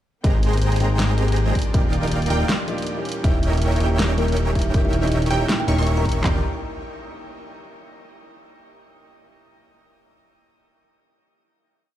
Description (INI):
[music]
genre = future bass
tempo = 160 BPM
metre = 4/4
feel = swing 56% on 16ths, half-time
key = Eb major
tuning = A4 = 441 Hz
[part]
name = warm grand piano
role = accompaniment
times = 0.2-6.4 s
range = Fb3 to G5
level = -30 LUFS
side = left 2 dB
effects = sidechain pumping, digital delay
[part]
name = clear studio string section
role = sustained chords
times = 0.2-6.4 s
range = Bb2 to G5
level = -35 LUFS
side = right 1 dB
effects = none
[part]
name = wide unison pluck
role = arpeggios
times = 0.2-6.4 s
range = G5 to Db6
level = -36 LUFS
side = right 2 dB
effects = phaser, sidechain pumping, digital delay
[part]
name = dense compressed supersaw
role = riff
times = 0.2-6.4 s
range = Ab3 to Db6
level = -28 LUFS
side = right 2 dB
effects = sidechain pumping, digital delay
[part]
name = fat analog bass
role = bass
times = 0.2-6.4 s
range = Eb1 to Ab1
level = -20 LUFS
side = equal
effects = sidechain pumping
[part]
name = pop drum kit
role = drums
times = 0.2-6.3 s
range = handclaps, kick drum, toms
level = -20 LUFS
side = equal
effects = none
[part]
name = pop drum kit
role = drums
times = 0.2-6.2 s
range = hi-hat, snare drum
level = -28 LUFS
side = equal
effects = none
[part]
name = kalimba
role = melody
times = 3.2-6.4 s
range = Bb3 to Bb5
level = -29 LUFS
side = equal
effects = sidechain pumping, ping-pong delay
[sound]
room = little or no reverb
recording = played on a big sound system in a bare room, large studio reverb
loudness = -18 LUFS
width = side -12 dB against mid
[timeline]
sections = 0.2-6.2 drop; 6.2-7.7 final chord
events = drop 0.2-6.2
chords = 0.2 Abmaj9; 1.6 Ebmaj9; 3.1 Eb7b9; 6.2 Ebmaj9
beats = | 0.24 0.62 0.99 1.37 | 1.74 2.12 2.49 2.87 | 3.24 3.62 3.99 4.37 | 4.74 5.12 5.49 5.87 | 6.24